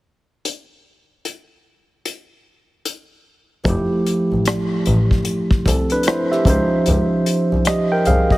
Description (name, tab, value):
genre	R&B, neo-soul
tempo	75 BPM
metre	4/4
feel	swing 62% on 16ths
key	unclear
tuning	A4 = 440 Hz
part	unplugged drum kit	drums	0.5-8.4 s	hi-hat, kick drum, rim click	-21 LUFS	left 1 dB	none
part	barky tine electric piano	accompaniment	3.6-8.4 s	F3 to G5	-18 LUFS	right 1 dB	overdrive
part	clear double bass	bass	3.7-8.2 s	F1 to Db2	-20 LUFS	equal	none
room	light reverb, small room ambience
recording	heavily compressed radio sound, multiband compression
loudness	-16 LUFS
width	side -18 dB against mid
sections	0.5-3.7 A section; 3.7-8.4 B section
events	none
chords	0.5 N.C.; 3.7 Fmaj9; 6.5 Dbmaj9